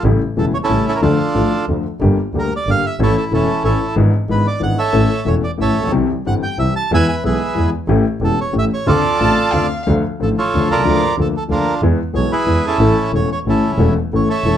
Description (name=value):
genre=tango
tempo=183 BPM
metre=3/4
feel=rubato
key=D harmonic minor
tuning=A4 = 439 Hz
part: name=bandoneon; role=melody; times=0.0-14.6 s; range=C#4 to A5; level=-18 LUFS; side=right 3 dB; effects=none
part: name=warm concert grand piano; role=accompaniment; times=0.0-14.6 s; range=C#1 to A4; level=-18 LUFS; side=left 4 dB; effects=none
part: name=clear double bass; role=bass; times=0.0-14.6 s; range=E1 to E2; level=-18 LUFS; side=right 2 dB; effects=none
part: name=rich violin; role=second line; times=9.2-9.9 s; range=F5 to A5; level=-22 LUFS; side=left 1 dB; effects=none
room=moderate club reverb, RT60 0.6 s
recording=dark, warm production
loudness=-14 LUFS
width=side -10 dB against mid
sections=0.0-9.9 A section; 9.9-14.6 A section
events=none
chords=0.0 A7; 1.0 Dm; 2.0 Gm; 3.0 A; 4.0 E7/G#; 4.9 A; 5.9 C; 6.9 E; 7.9 A7; 8.9 Dm7; 9.9 Dm; 10.9 Bb/D; 11.8 E; 12.8 A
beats=| 0.04 0.37 0.69 | 1.02 1.35 1.68 | 2.01 2.34 2.67 | 3.00 3.33 3.65 | 3.97 4.30 4.62 | 4.95 5.27 5.60 | 5.93 6.26 6.59 | 6.92 7.24 7.57 | 7.89 8.21 8.54 | 8.87 9.20 9.53 | 9.87 10.20 10.53 | 10.86 11.18 11.51 | 11.83 12.16 12.48 | 12.81 13.14 13.47 | 13.80 14.13 14.46